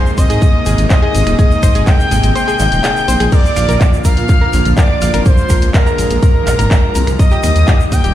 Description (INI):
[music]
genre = progressive house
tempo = 124 BPM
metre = 4/4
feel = straight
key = Bb mixolydian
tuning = A4 = 442 Hz
[part]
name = expressive portamento lead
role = melody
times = 0.0-8.1 s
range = Bb4 to G5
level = -18 LUFS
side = left 1 dB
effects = chorus, tape echo
[part]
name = warm studio violin section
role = second line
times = 0.0-8.1 s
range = Bb5 to G6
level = -25 LUFS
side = left 1 dB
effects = sidechain pumping, tape echo
[part]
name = lush unison pad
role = sustained chords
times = 0.0-8.1 s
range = C3 to G4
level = -20 LUFS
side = equal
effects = chorus, sidechain pumping
[part]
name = analog pluck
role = arpeggios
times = 0.0-8.1 s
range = G4 to F5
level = -23 LUFS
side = equal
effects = chorus, cassette tape, sidechain pumping, tape echo
[part]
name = egg shaker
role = percussion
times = 0.1-8.1 s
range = none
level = -31 LUFS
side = right 4 dB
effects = none
[part]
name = dark detuned saw bass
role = bass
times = 0.2-8.1 s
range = Eb1 to Bb2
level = -14 LUFS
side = equal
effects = sidechain pumping
[part]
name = electronic kick drum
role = drums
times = 0.2-8.0 s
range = none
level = -10 LUFS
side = equal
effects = small room ambience
[part]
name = house drum kit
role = drums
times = 0.2-8.1 s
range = crash cymbal, finger snaps, handclaps, hi-hat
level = -23 LUFS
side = left 1 dB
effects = sidechain pumping on hats, small room ambience, sidechain pumping on cymbals
[sound]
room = little or no reverb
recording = played on a big sound system in a bare room, large studio reverb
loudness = -9 LUFS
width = side -12 dB against mid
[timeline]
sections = 0.0-8.1 A section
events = break 2.4-3.3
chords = 0.0 Abadd9; 3.3 Bb; 7.2 Eb